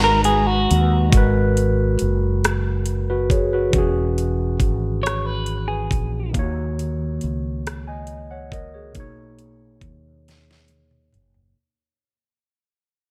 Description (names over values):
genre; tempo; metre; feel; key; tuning
slow six-eight R&B; 46 BPM (dotted quarters); 6/8; straight; G# minor; A4 = 439 Hz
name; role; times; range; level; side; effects
semi-hollow electric guitar; second line; 0.0-1.1, 5.0-6.3 s; F#4 to C#5; -24 LUFS; equal; none
overdriven tine electric piano; accompaniment; 0.0-11.6 s; B2 to G#5; -26 LUFS; equal; phaser
warm studio string section; sustained chords; 0.0-1.1 s; G#3 to A#5; -30 LUFS; equal; none
mellow fretless electric bass; bass; 0.0-11.5 s; E1 to D#2; -24 LUFS; equal; lush chorus
smooth R&B drum kit; drums; 0.2-11.5 s; hi-hat, kick drum, rim click, snare drum, toms; -23 LUFS; equal; none
room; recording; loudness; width
light reverb, digital ambience; none; -20 LUFS; mono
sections
0.0-1.1 A section; 1.1-11.6 B section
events
break 0.0-1.1; fade-out 1.1-11.6; drum fill 10.3-11.6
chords
0.0 G#m7; 1.1 G#m9; 3.7 E69; 6.3 D#m7; 8.9 Bmaj9